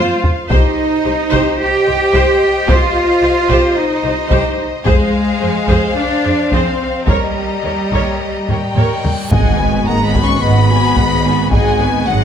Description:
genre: cinematic, epic orchestral film score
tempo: 109 BPM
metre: 4/4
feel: straight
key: C minor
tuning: A4 = 440 Hz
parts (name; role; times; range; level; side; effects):
- warm symphonic violin section; melody; 0.0-12.2 s; G4 to C#6; -24 LUFS; left 4 dB; none
- warm symphonic violin section; second line; 0.0-12.2 s; B4 to Bb5; -22 LUFS; left 4 dB; none
- rich symphonic viola section; accompaniment; 0.0-12.2 s; G#3 to Db5; -20 LUFS; right 1 dB; none
- mellow French horn section; sustained chords; 0.0-12.2 s; F#3 to G4; -20 LUFS; left 4 dB; none
- clear chamber cello section; bass; 0.0-12.2 s; G#2 to G4; -18 LUFS; right 3 dB; none
- clear symphonic double bass section; bass; 0.0-12.2 s; G#1 to F2; -20 LUFS; right 3 dB; none
- taiko ensemble; drums; 0.2-12.0 s; none; -17 LUFS; equal; none
- reverse cymbal and impact; sound effects; 9.0-11.5 s; none; -24 LUFS; equal; none
- hollow concert flute; second line; 8.5-12.2 s; F#5 to C#6; -22 LUFS; left 4 dB; none
room: wet recital hall reverb, RT60 1.5 s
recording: none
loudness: -12 LUFS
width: side -8 dB against mid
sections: 0.0-9.3 A section; 9.3-12.2 B section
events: drum fill 0.0-0.5, 8.5-9.3; reverse cymbal 9.0; impact 9.3-11.5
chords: 0.0 F5; 0.5 Cm; 4.9 Fm; 7.1 Eb7; 9.3 G#m7

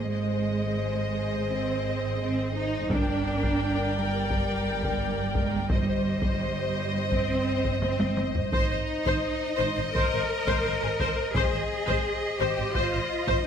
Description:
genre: cinematic, epic orchestral film score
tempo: 86 BPM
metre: 4/4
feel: straight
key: unclear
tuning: A4 = 440 Hz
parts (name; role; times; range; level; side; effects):
- warm symphonic violin section; melody; 0.0-13.5 s; Eb5 to G5; -34 LUFS; left 2 dB; none
- warm symphonic violin section; second line; 0.0-13.5 s; Ab4 to D5; -35 LUFS; left 6 dB; none
- rich symphonic viola section; accompaniment; 0.0-13.4 s; Ab4 to C5; -34 LUFS; equal; none
- mellow French horn section; sustained chords; 0.0-13.5 s; Bb4 to Eb5; -35 LUFS; left 3 dB; none
- dark chamber double bass section; bass; 0.0-13.4 s; G1 to Ab1; -31 LUFS; right 3 dB; none
- rich symphonic cello section; bass; 0.0-13.5 s; G3 to Bb4; -30 LUFS; right 2 dB; none
- taiko ensemble; drums; 2.9-13.5 s; none; -30 LUFS; equal; none
room: light reverb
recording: none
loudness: -24 LUFS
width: side -8 dB against mid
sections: 0.0-13.5 A section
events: drum fill 7.8-8.5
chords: 0.0 Ab; 2.9 Gm; 5.7 Cm/G; 8.5 Ab

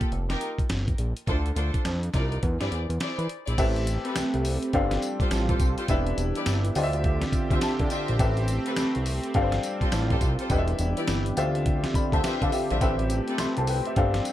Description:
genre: R&B, new jack swing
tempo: 104 BPM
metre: 4/4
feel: swing 62% on 16ths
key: A minor from 3.6 s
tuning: A4 = 440 Hz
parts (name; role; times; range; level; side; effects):
- warm studio string section; stabs; 0.0-13.4 s; C4 to E5; -34 LUFS; left 1 dB; tape echo
- dusty soul sampler-style drum kit; drums; 0.0-14.3 s; crash cymbal, hi-hat, kick drum, snare drum, tambourine; -28 LUFS; equal; none
- fat analog bass; bass; 0.1-14.2 s; E1 to E3; -27 LUFS; equal; none
- clear concert grand piano; accompaniment; 3.6-14.3 s; C4 to C6; -29 LUFS; left 2 dB; none
- sweeping resonant pad; sustained chords; 3.6-14.3 s; D3 to E5; -31 LUFS; right 2 dB; chorus
room: light reverb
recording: none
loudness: -23 LUFS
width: side -13 dB against mid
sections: 0.0-3.6 A section; 3.6-14.3 B section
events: grand piano fill 7.3-8.2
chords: 0.1 Fsus4; 1.3 Dm7; 2.1 Cm11; 2.4 E7alt; 3.6 Am9; 4.7 G9sus4; 5.9 Em7; 6.8 Dm11; 8.2 Am9; 9.3 G9sus4; 10.5 Em7; 11.4 Dm11; 12.8 Am9

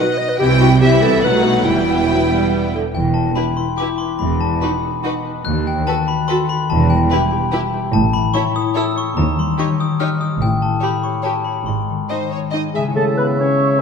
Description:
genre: cinematic, playful, whimsical film cue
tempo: 144 BPM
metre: 3/4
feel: straight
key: E minor, C# minor from 7.9 s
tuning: A4 = 439 Hz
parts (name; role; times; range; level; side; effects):
- rich studio violin section; melody; 0.0-12.6 s; B4 to G5; -24 LUFS; left 3 dB; none
- dark clarinet; second line; 0.0-2.7, 12.7-13.8 s; E4 to D#5; -19 LUFS; equal; none
- rich studio violin section; second line; 0.0-12.8 s; B3 to E5; -26 LUFS; left 1 dB; none
- rich studio viola section; accompaniment; 0.0-12.6 s; D3 to G4; -24 LUFS; right 3 dB; none
- concert harp; arpeggios; 0.0-13.8 s; G#2 to E5; -22 LUFS; left 6 dB; none
- clear studio cello section; bass; 0.4-12.0 s; D#2 to C3; -21 LUFS; right 4 dB; none
- clear studio double bass section; bass; 0.4-12.0 s; E1 to D#2; -22 LUFS; right 5 dB; none
- glockenspiel with hard plastic mallets; melody; 2.9-12.7 s; G5 to F#6; -22 LUFS; left 4 dB; none
- small flute group; second line; 12.7-13.8 s; G#5 to C#6; -23 LUFS; right 3 dB; none
- mellow French horn section; sustained chords; 12.7-13.8 s; G#3 to C#4; -23 LUFS; left 3 dB; none
- clear oboe; second line; 13.0-13.8 s; E5; -26 LUFS; right 5 dB; none
- mellow bassoon; accompaniment; 13.0-13.8 s; C#3; -21 LUFS; right 3 dB; none
room: wet scoring stage reverb, RT60 1.9 s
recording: none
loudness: -15 LUFS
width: side -6 dB against mid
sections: 0.0-2.9 A section; 2.9-13.0 B section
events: none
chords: 0.4 C; 1.2 B7; 1.7 Em; 4.2 B/E; 5.5 B7/D#; 6.7 Em; 7.9 A; 9.2 D#7; 10.4 A7; 11.7 G#; 13.0 C#m

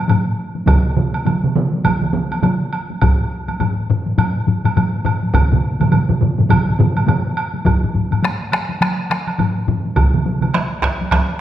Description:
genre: japanese traditional, taiko drum ensemble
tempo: 103 BPM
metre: 4/4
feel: swing 60% on 16ths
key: none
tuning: none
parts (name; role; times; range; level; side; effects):
- taiko ensemble; percussion; 0.1-11.3 s; none; -22 LUFS; left 1 dB; none
- taiko ensemble; percussion; 0.1-9.8 s; none; -18 LUFS; left 3 dB; none
- woodblock; percussion; 0.1-11.3 s; none; -25 LUFS; right 4 dB; none
- taiko ensemble; percussion; 0.7-11.3 s; none; -18 LUFS; right 3 dB; none
- taiko ensemble; percussion; 0.7-11.3 s; none; -19 LUFS; right 1 dB; none
room: wet recital hall reverb, RT60 1.5 s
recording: none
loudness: -15 LUFS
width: side -12 dB against mid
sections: 0.0-7.7 A section; 7.7-11.4 B section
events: none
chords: none

